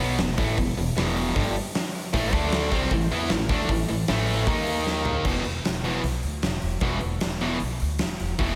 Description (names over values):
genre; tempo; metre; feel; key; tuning
hard rock; 153 BPM; 4/4; straight; unclear; A4 = 441 Hz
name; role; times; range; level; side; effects
distorted electric guitar; riff; 0.0-8.6 s; E2 to E4; -29 LUFS; equal; overdrive, slapback echo
upright bass; bass; 0.0-8.6 s; E1 to E2; -32 LUFS; equal; none
big rock drum kit; drums; 0.2-8.5 s; crash cymbal, hi-hat, kick drum, snare drum, toms; -30 LUFS; equal; none
tight distorted guitar; riff; 2.1-8.6 s; E2 to E4; -34 LUFS; equal; distortion, slapback echo
room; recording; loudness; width
moderate lush hall reverb, RT60 1.9 s, small room ambience; big arena sound; -25 LUFS; mono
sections
0.0-5.3 A section; 5.3-8.6 B section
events
drum fill 4.9-5.3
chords
0.0 E5; 2.1 A5; 2.3 D5; 2.7 A5; 4.5 D#5; 5.3 E5